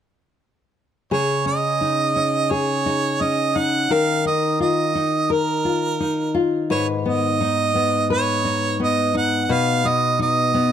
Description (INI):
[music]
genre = pop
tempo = 86 BPM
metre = 4/4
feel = straight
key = unclear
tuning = A4 = 440 Hz
[part]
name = clear harmonica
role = melody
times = 1.1-10.7 s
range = Bb4 to Gb5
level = -21 LUFS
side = right 5 dB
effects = none
[part]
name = nylon-string guitar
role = accompaniment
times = 1.1-10.7 s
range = Ab2 to Cb5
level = -21 LUFS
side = left 3 dB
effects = none
[sound]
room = light reverb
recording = close, detailed microphones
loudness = -18 LUFS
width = side -9 dB against mid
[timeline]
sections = 1.1-10.7 A section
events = none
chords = 1.1 Dbsus2; 3.9 Ebsus2; 6.7 Abm; 9.5 B